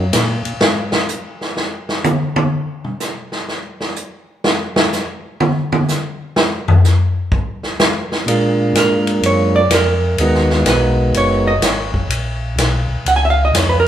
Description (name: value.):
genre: soul jazz organ trio.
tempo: 125 BPM.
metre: 4/4.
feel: swing 66% on 8ths.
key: unclear.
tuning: A4 = 440 Hz.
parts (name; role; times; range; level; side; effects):
percussive tonewheel organ; melody; 0.0, 8.3-11.5 s; Ab3 to Bb4; -17 LUFS; right 1 dB; slow rotary speaker.
mellow tonewheel organ; bass; 0.0-0.9, 8.3-13.9 s; Gb1 to Bb2; -18 LUFS; equal; slow rotary speaker.
swinging big-band drum kit; drums; 0.1-13.7 s; hi-hat, kick drum, ride cymbal, snare drum, toms; -17 LUFS; equal; none.
vintage hollow-body jazz guitar; accompaniment; 8.8-13.9 s; Bb4 to Ab5; -17 LUFS; right 2 dB; none.
room: moderate large studio reverb, RT60 1.4 s.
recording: band playing live in one room.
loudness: -14 LUFS.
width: side -10 dB against mid.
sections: 0.0-13.9 A section.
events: hollow-body jazz guitar solo 0.0-13.9; drum solo 0.6-8.3.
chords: 0.0 Ebm (rootless); 0.6 N.C.; 8.3 Bb7; 10.2 Abm7; 12.1 Bbm.